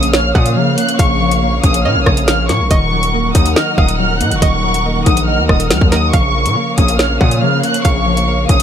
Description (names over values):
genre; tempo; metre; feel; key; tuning
hip hop, drill; 140 BPM; 4/4; half-time; Bb minor; A4 = 440 Hz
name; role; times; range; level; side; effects
dark symphonic violin section; melody; 0.0-8.6 s; Db6 to Gb6; -18 LUFS; equal; low-pass filter
string-like resonator pluck; second line; 0.0-8.2 s; Bb4 to Gb5; -25 LUFS; right 4 dB; chorus, ping-pong delay
warbly lo-fi synth keys; accompaniment; 0.0-8.6 s; Db3 to Eb5; -19 LUFS; left 1 dB; chorus, low-pass filter
dark studio string section; sustained chords; 0.0-8.6 s; Eb3 to Gb5; -21 LUFS; left 1 dB; none
distorted 808-style bass; bass; 0.0-8.6 s; Eb1 to Db3; -17 LUFS; equal; distortion
drill drum kit; drums; 0.0-8.6 s; hi-hat, kick drum, rim click, snare drum; -14 LUFS; equal; none
room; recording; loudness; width
little or no reverb; none; -11 LUFS; side -9 dB against mid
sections
0.0-8.6 A section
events
none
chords
0.0 Bbm; 2.7 Ebm; 6.1 Bbm